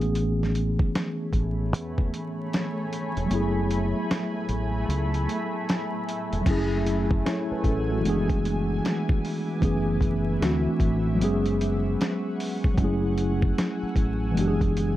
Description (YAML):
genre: lo-fi hip hop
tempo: 76 BPM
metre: 4/4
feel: swing 65% on 16ths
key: F# minor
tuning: A4 = 438 Hz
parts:
  - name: mellow tine electric piano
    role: accompaniment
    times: 0.0-15.0 s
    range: E3 to C#5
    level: -26 LUFS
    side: equal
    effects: fast stereo tremolo, cassette tape, low-pass filter, plate reverb
  - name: deep dub fingered electric bass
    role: bass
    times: 0.0-15.0 s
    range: E1 to E2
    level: -28 LUFS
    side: equal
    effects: none
  - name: dusty soul sampler-style drum kit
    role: drums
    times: 0.0-15.0 s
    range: crash cymbal, hi-hat, kick drum, snare drum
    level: -26 LUFS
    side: equal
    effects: overdrive
  - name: granular cloud pad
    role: sustained chords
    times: 1.2-15.0 s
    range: A3 to E6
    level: -34 LUFS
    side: left 1 dB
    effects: built-in reverb, low-pass filter, plate reverb
room: light reverb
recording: dark, warm production, vinyl crackle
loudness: -23 LUFS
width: side -14 dB against mid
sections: 0.0-6.5 A section; 6.5-15.0 B section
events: kick muted 3.3-6.5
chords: 0.0 Amaj9; 3.3 F#m11; 6.5 F#m9; 8.0 E7/F#; 9.6 Amaj9/F#; 10.4 D9; 11.2 C#7sus4/F#; 12.8 F#m9; 14.4 E7/F#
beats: | 0.15 0.94 1.73 2.52 | 3.31 4.10 4.89 5.67 | 6.46 7.25 8.04 8.83 | 9.62 10.41 11.20 11.99 | 12.78 13.57 14.36